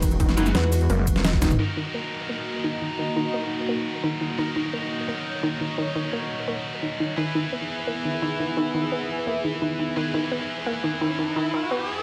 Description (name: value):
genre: dark technical drum and bass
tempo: 172 BPM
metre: 4/4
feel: straight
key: Eb phrygian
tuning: A4 = 441 Hz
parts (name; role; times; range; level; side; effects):
- sweeping resonant pad; sustained chords; 0.0-12.0 s; G#3 to E5; -34 LUFS; equal; chorus, sidechain pumping
- analog pluck; arpeggios; 0.0-11.8 s; Eb3 to Eb4; -30 LUFS; equal; chorus, cassette tape, sidechain pumping, digital delay
- metallic wobble bass; bass; 0.0-1.6 s; E1 to E2; -25 LUFS; equal; chorus
- dubstep drum kit; drums; 0.0-1.7 s; crash cymbal, hi-hat, ride cymbal, shaker, snare drum, toms; -28 LUFS; equal; overdrive, low-pass filter on hats, small room reverb, low-pass filter on snare, low-pass filter on cymbals, low-pass filter on perc, low-pass filter on toms
- electronic kick drum; drums; 0.0-1.5 s; none; -26 LUFS; equal; overdrive, small room reverb
- heavy high-gain guitar; stabs; 0.4-12.0 s; Eb4 to B4; -32 LUFS; equal; distortion, digital delay
- phased detuned saw bass; bass; 0.9-1.1 s; Gb1; -25 LUFS; equal; phaser, tube saturation
- riser; sound effects; 10.5-12.0 s; none; -36 LUFS; equal; none
room: moderate digital room reverb, RT60 1.2 s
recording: none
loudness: -26 LUFS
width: mono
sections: 0.0-1.6 A section; 1.6-12.0 B section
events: drop 0.0-1.6; drum fill 0.9-1.6; band accent 1.4; filter sweep on synth arpeggio sound 1.6-12.0; riser 10.5-12.0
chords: 0.0 E; 1.6 Ebm; 7.2 E